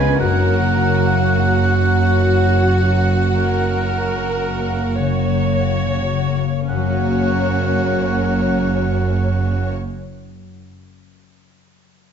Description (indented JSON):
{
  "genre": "classical",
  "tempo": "37 BPM",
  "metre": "4/4",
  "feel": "rubato",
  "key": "F# major",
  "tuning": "A4 = 440 Hz",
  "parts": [
    { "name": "clear studio violin section", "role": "melody", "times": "0.0-9.7 s", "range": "E#4 to F#4", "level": "-28 LUFS", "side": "left 6 dB", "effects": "none" },
    { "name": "dark clarinet", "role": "second line", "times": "0.0-9.7 s", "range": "F#4 to G#4", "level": "-28 LUFS", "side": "right 1 dB", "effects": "none" },
    { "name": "rich studio violin section", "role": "second line", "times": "0.0-9.7 s", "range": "C#5 to G#5", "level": "-28 LUFS", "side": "left 4 dB", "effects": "none" },
    { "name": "warm oboe", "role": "second line", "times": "0.0-9.7 s", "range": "F#5 to G#5", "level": "-24 LUFS", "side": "right 2 dB", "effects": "none" },
    { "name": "rich chamber viola section", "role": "accompaniment", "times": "0.0-9.7 s", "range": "A#3 to C#5", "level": "-25 LUFS", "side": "equal", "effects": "none" },
    { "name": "mellow French horn section", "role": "sustained chords", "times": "0.0-9.7 s", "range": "F#3 to G#3", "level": "-26 LUFS", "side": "left 4 dB", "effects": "none" },
    { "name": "warm trombone section", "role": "sustained chords", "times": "0.0-9.7 s", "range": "E#3 to B3", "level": "-27 LUFS", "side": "right 8 dB", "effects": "none" },
    { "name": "concert harp", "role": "arpeggios", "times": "0.0-10.6 s", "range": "F#2 to F#5", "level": "-24 LUFS", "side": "left 11 dB", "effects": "none" },
    { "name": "rich studio cello section", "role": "bass", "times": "0.0-9.7 s", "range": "F#2 to C#3", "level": "-23 LUFS", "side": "right 3 dB", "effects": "none" },
    { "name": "rich studio double bass section", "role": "bass", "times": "0.0-9.7 s", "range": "F#1 to C#2", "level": "-22 LUFS", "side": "right 3 dB", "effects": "none" }
  ],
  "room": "moderate recital hall reverb, RT60 1.3 s",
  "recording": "dark, warm production, nothing above 7.8 kHz",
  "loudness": "-15 LUFS",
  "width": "side -7 dB against mid",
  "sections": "0.0-6.7 A section; 6.7-12.1 B section",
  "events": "slowing down 0.0-6.7",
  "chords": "0.2 F#"
}